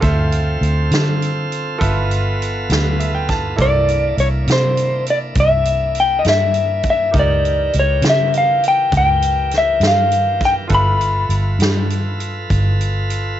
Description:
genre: slow blues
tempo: 67 BPM (dotted quarters)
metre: 12/8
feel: straight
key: unclear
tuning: A4 = 439 Hz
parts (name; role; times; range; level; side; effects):
- bright baby grand piano; accompaniment; 0.0-13.4 s; Eb4 to A5; -27 LUFS; right 4 dB; none
- bright tonewheel organ; sustained chords; 0.0-13.4 s; E3 to B4; -26 LUFS; right 1 dB; overdrive, stopped rotary speaker
- vintage muted fingered electric bass; bass; 0.0-13.4 s; G1 to D3; -18 LUFS; equal; none
- swinging big-band drum kit; drums; 0.0-13.2 s; hi-hat, kick drum, snare drum; -22 LUFS; right 1 dB; cassette tape
- electric slide guitar; melody; 3.6-11.4 s; C5 to B5; -15 LUFS; left 2 dB; cassette tape
room: moderate booth ambience, RT60 0.2 s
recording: home recording on cassette, nothing above 7.8 kHz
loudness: -14 LUFS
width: side -11 dB against mid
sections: 0.0-13.4 A section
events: grand piano fill 2.7-3.6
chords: 0.0 Dm7; 1.8 G13; 3.6 C13; 7.1 C#dim7; 10.7 G13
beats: | 0.02 0.91 1.80 2.69 | 3.58 4.47 5.36 6.25 | 7.14 8.03 8.92 9.81 | 10.71 11.60 12.49 13.39

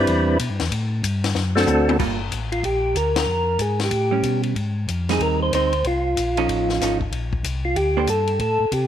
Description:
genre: soul jazz organ trio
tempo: 187 BPM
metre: 4/4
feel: swing 63% on 8ths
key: G minor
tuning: A4 = 440 Hz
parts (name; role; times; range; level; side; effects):
- percussive tonewheel organ; melody; 0.0-8.9 s; G3 to C5; -21 LUFS; equal; slow rotary speaker
- vintage hollow-body jazz guitar; accompaniment; 0.0-8.1 s; F3 to C5; -26 LUFS; right 10 dB; none
- mellow tonewheel organ; bass; 0.0-8.9 s; G1 to C3; -24 LUFS; left 1 dB; slow rotary speaker
- compact cocktail drum kit; drums; 0.1-8.8 s; crash cymbal, hi-hat, kick drum, ride cymbal, snare drum, toms; -28 LUFS; left 6 dB; none
room: light reverb, studio reverb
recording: 1960s-style stereo with parts hard left and right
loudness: -19 LUFS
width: side -10 dB against mid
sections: 0.0-2.0 A section; 2.0-8.9 B section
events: drum fill 1.4-2.0; band accent 3.1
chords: 0.0 Cmaj9; 0.7 Gsus2; 1.4 D7; 2.0 Gm9; 3.3 Bb5; 3.9 A9; 4.6 Abmaj7; 5.8 Cm7; 6.5 F7alt; 7.1 Bbmaj9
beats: 0.08 0.40 | 0.71 1.03 1.35 1.67 | 1.99 2.31 2.63 2.95 | 3.27 3.59 3.92 4.24 | 4.56 4.88 5.20 5.52 | 5.84 6.16 6.48 6.80 | 7.12 7.44 7.76 8.09 | 8.40 8.73

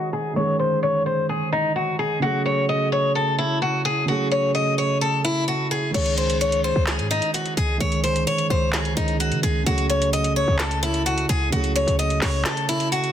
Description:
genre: hip hop, trap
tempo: 129 BPM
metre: 4/4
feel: half-time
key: unclear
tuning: A4 = 444 Hz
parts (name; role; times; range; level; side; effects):
- picked steel-string acoustic guitar; melody; 0.0-13.1 s; D#4 to D#5; -22 LUFS; left 2 dB; low-pass filter
- felt-muted upright piano; accompaniment; 0.0-13.1 s; C#3 to G#4; -25 LUFS; right 3 dB; low-pass filter
- short 808-style bass; bass; 5.9-12.4 s; C#2 to C#3; -24 LUFS; equal; none
- trap drum kit; drums; 5.9-13.1 s; crash cymbal, handclaps, hi-hat, snare drum; -28 LUFS; equal; vintage 12-bit sampler grit
room: light reverb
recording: dense, heavily limited modern master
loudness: -19 LUFS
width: side -10 dB against mid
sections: 0.0-5.9 A section; 5.9-13.1 B section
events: filter sweep 0.0-5.9; kick muted 12.5-13.1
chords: 0.0 C#sus2; 2.2 F#madd9/C#; 5.9 C#sus2; 9.7 F#madd9/C#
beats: | 0.36 0.83 1.29 1.76 | 2.22 2.69 3.15 3.62 | 4.08 4.55 5.01 5.48 | 5.94 6.41 6.87 7.34 | 7.80 8.27 8.73 9.20 | 9.66 10.13 10.60 11.06 | 11.53 11.99 12.46 12.92

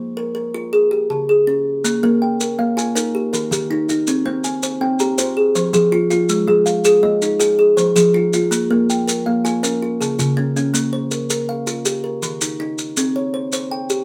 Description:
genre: southern african traditional, mbira-style interlocking cycle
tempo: 108 BPM (dotted quarters)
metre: 12/8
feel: straight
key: Bb dorian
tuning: A4 = 441 Hz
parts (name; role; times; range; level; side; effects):
- kalimba; arpeggios; 0.0-14.0 s; Db3 to G5; -20 LUFS; equal; none
- maracas; percussion; 1.8-14.0 s; none; -26 LUFS; equal; none
- kalimba; arpeggios; 2.0-10.9 s; Db3 to Bb5; -22 LUFS; equal; none
room: moderate studio reverb, RT60 0.6 s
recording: band playing live in one room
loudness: -18 LUFS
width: mono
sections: 0.0-1.8 A section; 1.8-10.7 A section; 10.7-14.0 B section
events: none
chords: 0.0 Bb5; 0.7 Db5; 1.8 Bb5; 3.0 Eb; 4.1 Cm; 5.2 Fm; 6.3 Ab5; 7.4 Fm; 8.5 Bb5; 9.6 Db; 10.7 Bbm; 11.9 Eb; 13.0 C5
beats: 0.17 0.73 1.29 | 1.84 2.40 2.96 3.51 | 4.07 4.63 5.18 5.74 | 6.29 6.85 7.41 7.96 | 8.52 9.07 9.63 10.19 | 10.74 11.30 11.85 12.41 | 12.96 13.52

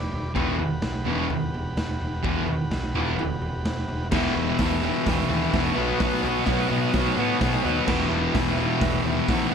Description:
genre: garage rock duo or trio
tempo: 128 BPM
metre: 4/4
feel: straight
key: E minor, E harmonic minor from 4.1 s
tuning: A4 = 439 Hz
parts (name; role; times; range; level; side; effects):
- overdriven combo organ; sustained chords; 0.0-9.5 s; F#4 to F#5; -34 LUFS; right 1 dB; none
- overdriven picked electric bass; bass; 0.0-9.4 s; E1 to B2; -31 LUFS; equal; none
- raw garage drum kit; drums; 0.1-9.4 s; crash cymbal, hi-hat, kick drum, snare drum, toms; -28 LUFS; equal; none
- thick fuzz guitar; riff; 0.3-9.5 s; E2 to B3; -23 LUFS; left 1 dB; distortion
room: light reverb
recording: none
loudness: -22 LUFS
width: side -7 dB against mid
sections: 0.0-4.1 A section; 4.1-9.5 B section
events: none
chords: 0.0 Em; 5.8 B; 7.9 Em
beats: | 0.36 0.83 1.30 1.77 | 2.24 2.71 3.18 3.65 | 4.12 4.59 5.06 5.53 | 5.99 6.46 6.93 7.40 | 7.87 8.34 8.81 9.28

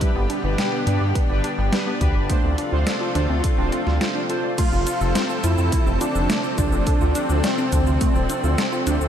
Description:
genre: synthwave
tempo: 105 BPM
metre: 4/4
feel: straight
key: unclear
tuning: A4 = 441 Hz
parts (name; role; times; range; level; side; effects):
- lush unison pad; sustained chords; 0.0-9.1 s; B2 to A4; -26 LUFS; equal; chorus, sidechain pumping
- analog pluck; arpeggios; 0.0-9.1 s; G3 to D5; -29 LUFS; right 2 dB; chorus, ping-pong delay
- analog synth brass; stabs; 0.0-4.5 s; D4 to C5; -28 LUFS; right 1 dB; chorus, ping-pong delay
- detuned 8-bit digital drum machine; drums; 0.0-9.1 s; crash cymbal, hi-hat, shaker, snare drum; -28 LUFS; left 1 dB; overdrive, small room ambience
- electronic kick drum; drums; 0.0-8.1 s; none; -21 LUFS; equal; small room ambience
- wide detuned saw bass; bass; 0.2-9.1 s; D1 to G2; -22 LUFS; equal; chorus
- wide unison lead; melody; 4.6-9.0 s; C4 to F4; -25 LUFS; equal; cassette tape, ping-pong delay
room: moderate lush hall reverb, RT60 2.5 s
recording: dreamy mix soaked in reverb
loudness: -18 LUFS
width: side -9 dB against mid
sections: 0.0-4.6 A section; 4.6-9.1 B section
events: break 4.0-4.6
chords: 0.0 G; 2.3 Dm7; 4.6 F; 6.9 Dm7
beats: | 0.01 0.58 1.15 1.73 | 2.30 2.87 3.44 4.01 | 4.58 5.15 5.72 6.30 | 6.87 7.44 8.01 8.58

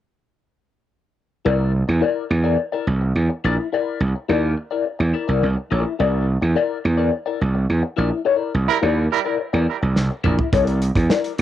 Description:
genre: funk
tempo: 106 BPM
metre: 4/4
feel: straight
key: C mixolydian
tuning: A4 = 440 Hz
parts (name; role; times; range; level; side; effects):
- electric guitar at the edge of break-up; accompaniment; 1.5-11.4 s; E4 to D5; -22 LUFS; left 8 dB; wah, cassette tape
- gritty slap bass; bass; 1.5-11.4 s; Bb1 to E2; -18 LUFS; right 2 dB; overdrive
- clear horn section; second line; 8.7-9.2 s; G3 to Bb4; -23 LUFS; right 9 dB; cassette tape, analog delay
- damped 70s drum kit; drums; 10.0-11.4 s; hi-hat, kick drum, snare drum, toms; -21 LUFS; right 2 dB; cassette tape
room: studio ambience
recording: home recording on cassette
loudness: -18 LUFS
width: side -12 dB against mid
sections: 1.5-11.4 A section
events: band accent 8.3-10.5; drum fill 10.0-10.5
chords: 1.5 C9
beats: | 1.45 2.02 2.59 3.15 | 3.72 4.29 4.86 5.42 | 5.99 6.56 7.12 7.69 | 8.26 8.82 9.39 9.96 | 10.53 11.09

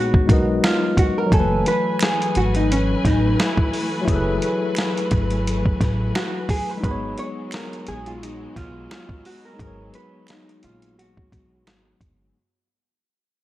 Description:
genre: lo-fi hip hop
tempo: 87 BPM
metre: 4/4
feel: swing 55% on 16ths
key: unclear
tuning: A4 = 438 Hz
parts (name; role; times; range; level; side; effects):
- vintage hollow-body jazz guitar; melody; 0.0-12.0 s; C#4 to C#5; -24 LUFS; right 1 dB; low-pass filter, tape echo
- tine electric piano; accompaniment; 0.0-12.4 s; E3 to G#5; -24 LUFS; left 2 dB; medium stereo tremolo, low-pass filter
- upright bass; bass; 0.0-12.3 s; F#1 to B1; -24 LUFS; equal; none
- dusty soul sampler-style drum kit; drums; 0.1-12.2 s; hi-hat, kick drum, snare drum; -21 LUFS; equal; none
- finger snap; percussion; 0.6-11.8 s; none; -31 LUFS; right 6 dB; none
- rich studio string section; sustained chords; 1.3-12.3 s; E3 to G#5; -30 LUFS; equal; low-pass filter
room: light reverb, studio reverb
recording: none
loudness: -18 LUFS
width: side -15 dB against mid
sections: 0.0-12.4 A section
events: fade-out 0.0-12.4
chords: 0.0 G#m11; 1.3 F#m11; 6.8 G#m11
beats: 0.63 | 1.32 2.01 2.70 3.39 | 4.08 4.77 5.46 6.15 | 6.84 7.53 8.22 8.91 | 9.60 10.29 10.97 11.66

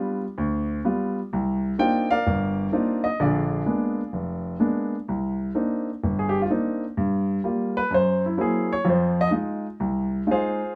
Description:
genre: solo jazz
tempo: 127 BPM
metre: 4/4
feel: swing 68% on 8ths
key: C minor from 5.1 s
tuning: A4 = 440 Hz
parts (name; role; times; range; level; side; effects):
- warm baby grand piano; solo; 0.0-10.8 s; F1 to G5; -24 LUFS; equal; none
room: moderate club reverb, RT60 0.8 s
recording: none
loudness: -24 LUFS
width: mono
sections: 0.0-5.1 A section; 5.1-10.8 B section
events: grand piano solo 5.1-10.8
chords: 0.0 G7; 1.3 Cm11; 3.2 Bb7b9; 5.1 Cm9; 7.0 G7#9; 7.9 F#7#11; 8.9 Fm7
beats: 0.36 0.83 | 1.30 1.78 2.25 2.72 | 3.19 3.66 4.13 4.61 | 5.08 5.55 6.02 6.49 | 6.96 7.43 7.91 8.38 | 8.85 9.32 9.79 10.27 | 10.74

